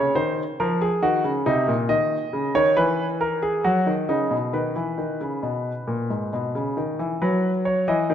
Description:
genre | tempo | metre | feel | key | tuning
classical, baroque-style two-part invention for grand piano | 68 BPM | 3/4 | straight | B major | A4 = 441 Hz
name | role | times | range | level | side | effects
clear grand piano | solo | 0.0-8.1 s | G#2 to D#5 | -20 LUFS | equal | none
room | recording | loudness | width
wet recital hall reverb, RT60 1.7 s | none | -21 LUFS | side -9 dB against mid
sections
0.0-7.2 A section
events
none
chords
0.0 Eb5; 1.0 Cdim; 1.9 C#sus2; 2.8 E; 3.6 F#5; 4.5 B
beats
0.15 1.02 | 1.89 2.77 3.65 | 4.53 5.43 6.32 | 7.22 8.10

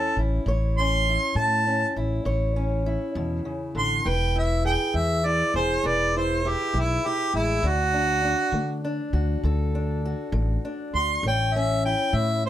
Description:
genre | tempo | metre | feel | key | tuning
acoustic country blues, solo or duo | 67 BPM (dotted quarters) | 12/8 | straight | A major | A4 = 440 Hz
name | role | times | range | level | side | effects
warm harmonica | melody | 0.0-12.5 s | E4 to C6 | -24 LUFS | right 1 dB | none
fingerpicked acoustic archtop guitar | accompaniment | 0.0-12.5 s | A2 to C#5 | -29 LUFS | left 1 dB | none
upright bass | bass | 0.2-12.5 s | E1 to D3 | -26 LUFS | equal | none
room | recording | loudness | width
light reverb | none | -22 LUFS | side -12 dB against mid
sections
0.0-12.5 A section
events
none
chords
0.0 A; 4.1 E; 7.6 D; 11.2 A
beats
| 0.46 1.36 2.26 3.16 | 4.05 4.95 5.84 6.74 | 7.64 8.54 9.43 10.33 | 11.23 12.13

